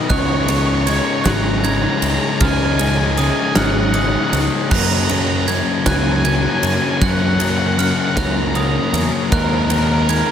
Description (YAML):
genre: post-rock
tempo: 52 BPM (dotted quarters)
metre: 6/8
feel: straight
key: unclear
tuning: A4 = 440 Hz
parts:
  - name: granular cloud pad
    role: sustained chords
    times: 0.0-10.3 s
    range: D#4 to A#5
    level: -30 LUFS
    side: right 4 dB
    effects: none
  - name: glockenspiel with brass mallets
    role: arpeggios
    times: 0.0-10.3 s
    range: D#6 to G#6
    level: -26 LUFS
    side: right 5 dB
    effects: slapback echo, tape echo
  - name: thick fuzz guitar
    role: riff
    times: 0.0-10.3 s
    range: F#2 to D#4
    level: -19 LUFS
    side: left 6 dB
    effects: distortion
  - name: octave-fuzz lead guitar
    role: melody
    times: 0.1-10.3 s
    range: A#4 to A#5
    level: -22 LUFS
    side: right 2 dB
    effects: distortion, slapback echo, tape echo
  - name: growling fingered electric bass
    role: bass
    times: 0.1-10.2 s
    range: G#1 to F#2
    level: -20 LUFS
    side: right 1 dB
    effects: overdrive
  - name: huge arena drum kit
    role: drums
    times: 0.1-10.3 s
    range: crash cymbal, kick drum, ride cymbal, snare drum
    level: -20 LUFS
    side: right 1 dB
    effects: none
room: light reverb, studio reverb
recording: none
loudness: -14 LUFS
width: side -8 dB against mid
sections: 0.0-10.3 A section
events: none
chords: 0.1 C#sus2; 4.7 F#; 9.3 D#sus4